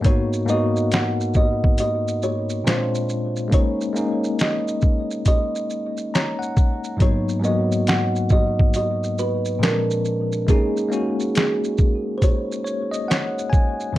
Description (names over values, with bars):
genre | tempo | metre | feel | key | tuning
lo-fi hip hop | 69 BPM | 4/4 | swing 63% on 16ths | unclear | A4 = 438 Hz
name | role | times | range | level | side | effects
kalimba | melody | 0.0-14.0 s | G#4 to F#5 | -25 LUFS | right 2 dB | low-pass filter, tape echo, plate reverb
bell-like tine electric piano | accompaniment | 0.0-14.0 s | G#2 to A#5 | -23 LUFS | left 2 dB | medium stereo tremolo, cassette tape, low-pass filter, plate reverb
lo-fi sampler-style drum kit | drums | 0.0-13.9 s | hi-hat, kick drum, shaker, snare drum | -19 LUFS | equal | none
room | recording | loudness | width
light reverb | cassette tape | -18 LUFS | side -15 dB against mid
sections
0.0-14.0 A section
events
none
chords
0.0 G#m9; 2.7 A#7; 3.5 D#7sus4; 7.0 G#m9; 9.6 A#7; 10.5 D#7sus4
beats
| 0.05 0.92 1.79 2.66 | 3.53 4.40 5.27 6.13 | 7.00 7.87 8.74 9.61 | 10.48 11.35 12.22 13.09 | 13.96